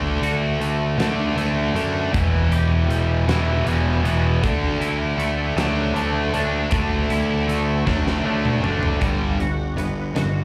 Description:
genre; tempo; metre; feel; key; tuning
quiet-loud alternative rock; 52 BPM (dotted quarters); 6/8; straight; unclear; A4 = 438 Hz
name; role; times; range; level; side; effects
twangy electric guitar; arpeggios; 0.0-10.4 s; E2 to G4; -32 LUFS; equal; ensemble chorus, slapback echo
sludgy distorted guitar; riff; 0.0-10.4 s; E2 to D4; -25 LUFS; equal; overdrive, slapback echo
fuzz picked electric bass; bass; 0.0-10.4 s; E1 to F#2; -25 LUFS; equal; overdrive
big rock drum kit; drums; 0.2-10.3 s; hi-hat, kick drum, snare drum, toms; -29 LUFS; equal; none
room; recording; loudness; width
little or no reverb; live gig heard through the venue's PA, club reverb; -21 LUFS; mono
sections
0.0-9.0 A section; 9.0-10.4 B section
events
drum fill 7.9-9.0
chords
0.0 D; 2.1 Em; 4.4 Dadd9; 9.0 Gmaj7

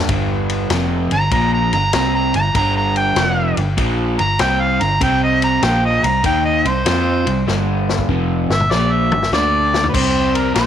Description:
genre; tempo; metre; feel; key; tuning
blues rock power trio and southern rock; 98 BPM; 4/4; swing 67% on 8ths; unclear; A4 = 440 Hz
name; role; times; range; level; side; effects
crunchy overdriven guitar; riff; 0.0-10.7 s; F2 to F4; -19 LUFS; equal; none
vintage muted fingered electric bass; bass; 0.0-10.7 s; F1 to F2; -22 LUFS; equal; none
vintage drum kit; drums; 0.1-10.7 s; crash cymbal, kick drum, ride cymbal, snare drum, toms; -22 LUFS; left 4 dB; none
mellow harmonica; melody; 1.1-10.7 s; Bb4 to Bb5; -18 LUFS; right 1 dB; overdrive
room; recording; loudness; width
light reverb; 1960s-style stereo; -14 LUFS; side -9 dB against mid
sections
0.0-9.9 A section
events
harmonica solo 0.0-9.9; drum fill 7.5-9.9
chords
0.1 Gm7; 5.0 Cm7; 7.5 Gm7; 9.3 D5; 9.9 C7(no3)

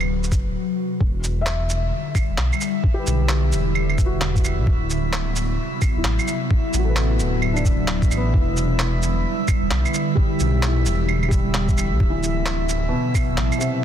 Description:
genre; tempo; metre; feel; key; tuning
future garage; 131 BPM; 4/4; swing 63% on 16ths; E minor; A4 = 441 Hz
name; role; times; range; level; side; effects
felt-muted upright piano; accompaniment; 0.0-13.8 s; B2 to E5; -29 LUFS; left 2 dB; sidechain pumping, dub echo
ethereal airy pad; sustained chords; 0.0-13.8 s; C3 to F#4; -26 LUFS; equal; ensemble chorus, built-in reverb, phaser, sidechain pumping
dark detuned saw bass; bass; 0.0-13.5 s; D1 to B1; -22 LUFS; equal; tube saturation, sidechain pumping
electronic claves, shaker and handclaps; drums; 0.0-13.7 s; none; -28 LUFS; right 2 dB; none
electronic kick drum; drums; 0.3-13.3 s; none; -19 LUFS; equal; none
drifting glass-harmonics texture; texture; 1.8-13.8 s; E5; -32 LUFS; right 2 dB; chorus, built-in reverb
room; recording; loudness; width
digital ambience; dense, heavily limited modern master; -18 LUFS; side -10 dB against mid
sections
0.0-1.0 A section; 1.0-13.8 B section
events
stop 0.6-1.0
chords
0.0 D13; 1.0 Em7; 4.7 D13; 8.3 Em7; 12.0 D13

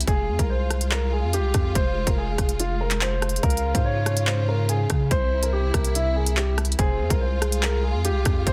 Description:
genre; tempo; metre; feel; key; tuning
hip hop, drill; 143 BPM; 4/4; half-time; F harmonic minor; A4 = 440 Hz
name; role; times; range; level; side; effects
warm symphonic string section; sustained chords; 0.0-8.5 s; C3 to F4; -35 LUFS; equal; none
long sustained 808-style bass; bass; 0.0-8.5 s; F1 to Db3; -27 LUFS; equal; none
drill drum kit; drums; 0.0-8.5 s; handclaps, hi-hat, kick drum, rim click; -27 LUFS; equal; soft clipping on snare
dark grand piano; melody; 0.1-8.5 s; E4 to Db5; -30 LUFS; equal; low-pass filter
soft octave-layered synth lead; second line; 3.4-8.5 s; G4 to F5; -35 LUFS; equal; chorus, digital delay
room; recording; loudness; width
little or no reverb; dense, heavily limited modern master; -23 LUFS; mono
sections
0.0-8.5 A section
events
none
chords
0.1 Fm; 3.4 Db; 5.1 C; 6.8 Fmadd9

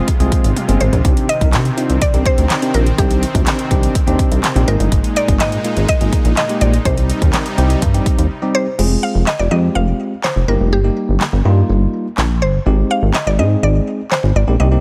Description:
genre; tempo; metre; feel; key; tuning
dance-pop; 124 BPM; 4/4; straight; C minor; A4 = 439 Hz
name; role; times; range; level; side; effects
mallet-like synth pluck; melody; 0.0-14.8 s; G4 to F5; -23 LUFS; equal; chorus, digital delay
bell-like tine electric piano; accompaniment; 0.0-14.8 s; G3 to Bb4; -23 LUFS; equal; sidechain pumping
supersaw pad; sustained chords; 0.0-8.8 s; Bb2 to F4; -27 LUFS; equal; sidechain pumping
pop drum kit; drums; 0.1-14.2 s; crash cymbal, handclaps, hi-hat, kick drum, snare drum, toms; -20 LUFS; equal; none
chorused synth bass; bass; 0.2-14.8 s; F1 to C3; -17 LUFS; equal; sidechain pumping
room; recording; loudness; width
little or no reverb; none; -15 LUFS; mono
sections
0.0-8.8 A section; 8.8-14.8 B section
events
drum fill 0.6-1.0; break 8.3-8.8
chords
0.0 Fm; 1.0 Cmadd9; 4.7 Absus2; 6.9 Cm; 8.8 Fm; 10.5 Eb; 12.7 Abmaj7

